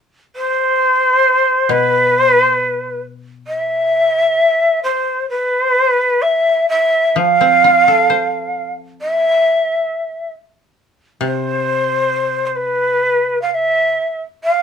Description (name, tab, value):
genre	japanese traditional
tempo	66 BPM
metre	2/4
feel	rubato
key	unclear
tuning	A4 = 440 Hz
part	breathy shakuhachi	melody	0.4-14.6 s	B4 to F5	-13 LUFS	equal	none
part	koto	accompaniment	1.7-4.4, 7.2-14.0 s	B2 to C5	-22 LUFS	left 4 dB	none
room	light reverb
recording	dark, warm production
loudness	-13 LUFS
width	side -7 dB against mid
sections	0.0-14.4 A section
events	none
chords	none